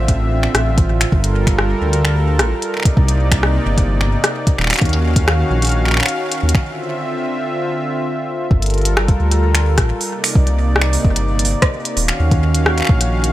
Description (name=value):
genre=IDM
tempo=130 BPM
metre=4/4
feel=straight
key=G minor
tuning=A4 = 441 Hz
part: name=warm analog pad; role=sustained chords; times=0.0-13.3 s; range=C3 to F5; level=-20 LUFS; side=equal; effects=chorus
part: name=dark detuned saw bass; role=bass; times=0.0-13.3 s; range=Eb1 to Eb2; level=-16 LUFS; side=equal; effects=none
part: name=electronic kick drum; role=drums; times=0.1-13.0 s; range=none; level=-14 LUFS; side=equal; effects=small room ambience
part: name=glitchy drum kit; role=drums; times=0.1-13.3 s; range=finger snaps, hi-hat, rim click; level=-20 LUFS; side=equal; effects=small room ambience, digital delay
room=little or no reverb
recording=none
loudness=-14 LUFS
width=side -15 dB against mid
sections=0.0-8.5 A section; 8.5-13.3 A section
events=break 6.7-8.5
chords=0.0 Dm9; 1.1 Gm9; 2.7 Cm9; 4.6 Ebm9; 6.7 Dm9; 8.5 Gm9; 10.1 Cm9; 12.0 Ebm9